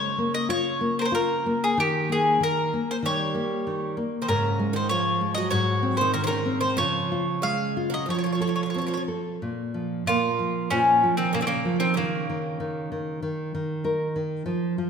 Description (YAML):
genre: fado-style ballad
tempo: 95 BPM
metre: 4/4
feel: rubato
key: Db major, Bb minor from 9.4 s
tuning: A4 = 440 Hz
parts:
  - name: mandolin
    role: melody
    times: 0.0-13.2 s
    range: Bb3 to F5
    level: -25 LUFS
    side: equal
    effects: none
  - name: nylon-string guitar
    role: accompaniment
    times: 0.0-14.9 s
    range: Ab2 to Bb4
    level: -27 LUFS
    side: equal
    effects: none
  - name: picked twelve-string acoustic guitar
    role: second line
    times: 3.1-13.2 s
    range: Db3 to Bb3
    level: -30 LUFS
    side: right 4 dB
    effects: none
room: wet scoring stage reverb, RT60 1.9 s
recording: minimal, uncompressed stereo recording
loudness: -22 LUFS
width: side -6 dB against mid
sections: 0.0-9.4 A section; 9.4-14.9 B section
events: nylon-string guitar fill 13.5-14.5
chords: 0.0 Db6; 1.8 Eb7; 4.3 Ab13sus4; 5.5 Ab; 6.8 Db; 8.1 F; 9.4 Bb5; 12.0 N.C.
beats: 0.51 1.15 | 1.79 2.42 3.05 3.67 | 4.29 4.91 5.54 6.17 | 6.80 7.44 8.09 8.76 | 9.41 10.05 10.70 11.34 | 11.97 12.60 13.23 13.86 | 14.48